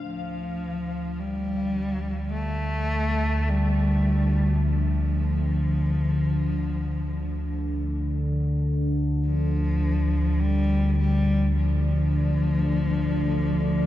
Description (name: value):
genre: dark ambient drone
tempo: 52 BPM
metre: 4/4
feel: straight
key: D minor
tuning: A4 = 439 Hz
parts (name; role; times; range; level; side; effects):
- dark cello; melody; 0.0-13.9 s; F3 to A3; -28 LUFS; left 1 dB; tape echo
- deep dark ambient pad; sustained chords; 0.0, 11.6-13.9 s; A3 to F5; -36 LUFS; right 1 dB; chorus, built-in reverb
- analog drone; drone; 0.6-13.9 s; D2 to D3; -23 LUFS; equal; chorus
room: moderate huge ambient reverb, RT60 7.9 s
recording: dark, warm production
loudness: -22 LUFS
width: side -13 dB against mid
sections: 0.0-13.9 A section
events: none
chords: 0.0 Dm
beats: | 0.03 1.19 2.34 3.49 | 4.65 5.80 6.96 8.11 | 9.26 10.42 11.57 12.72